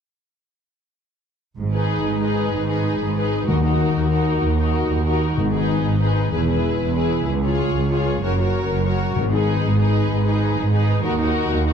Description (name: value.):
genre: cinematic.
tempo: 127 BPM (dotted quarters).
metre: 12/8.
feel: straight.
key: G# minor.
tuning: A4 = 441 Hz.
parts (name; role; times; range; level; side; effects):
rich symphonic cello section; bass; 1.6-11.7 s; C#2 to G#2; -23 LUFS; right 2 dB; none.
warm symphonic double bass section; bass; 1.6-11.7 s; E1 to D#2; -24 LUFS; right 2 dB; none.
warm symphonic violin section; melody; 1.7-11.7 s; A#4 to C#5; -29 LUFS; left 4 dB; none.
warm symphonic violin section; second line; 1.7-11.7 s; F#4 to A#4; -26 LUFS; left 5 dB; none.
warm symphonic viola section; accompaniment; 1.7-11.7 s; D#4 to F#4; -26 LUFS; right 1 dB; none.
timpani; percussion; 3.5-5.8, 9.2-9.6 s; G#2 to D#3; -24 LUFS; left 5 dB; none.
room: moderate scoring stage reverb, RT60 2.0 s.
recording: dark, warm production.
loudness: -18 LUFS.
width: side -7 dB against mid.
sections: 1.6-11.7 A section.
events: build-up 1.6-11.7.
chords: 1.6 G#m; 3.5 D#m; 5.4 G#m; 6.3 E; 7.3 C#; 8.2 F#; 9.2 G#m; 11.0 D#m.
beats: | 1.58 2.05 2.53 3.01 | 3.48 3.96 4.43 4.91 | 5.38 5.86 6.33 6.81 | 7.28 7.76 8.23 8.70 | 9.17 9.64 10.11 10.57 | 11.04 11.51.